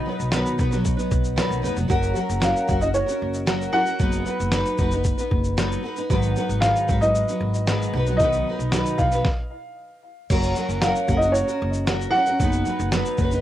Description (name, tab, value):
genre	acoustic pop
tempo	114 BPM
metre	4/4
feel	straight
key	F# major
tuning	A4 = 440 Hz
part	dark upright piano	melody	0.0-12.9 s	C#5 to F#5	-24 LUFS	equal	cassette tape, plate reverb, analog delay
part	picked steel-string acoustic guitar	accompaniment	0.0-13.4 s	G#2 to B4	-25 LUFS	equal	double-tracked left and right, cassette tape
part	upright bass	bass	0.2-13.4 s	E#1 to B1	-26 LUFS	equal	none
part	dusty soul sampler-style drum kit	drums	0.2-13.4 s	crash cymbal, kick drum, shaker, snare drum	-25 LUFS	equal	cassette tape
room	moderate booth ambience, RT60 0.2 s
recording	home recording on cassette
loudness	-20 LUFS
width	side -12 dB against mid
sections	0.0-10.3 A section; 10.3-13.4 A section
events	stop 9.3-10.3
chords	0.0 B; 1.9 F#; 4.0 B/F#; 6.1 G#m7; 7.9 B; 9.3 N.C.; 10.3 F#; 12.4 B/F#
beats	0.33 0.86 1.38 | 1.91 2.43 2.96 3.48 | 4.01 4.53 5.06 5.58 | 6.11 6.63 7.16 7.68 | 8.21 8.73 9.26 9.78 | 10.30 10.83 11.35 11.88 | 12.40 12.93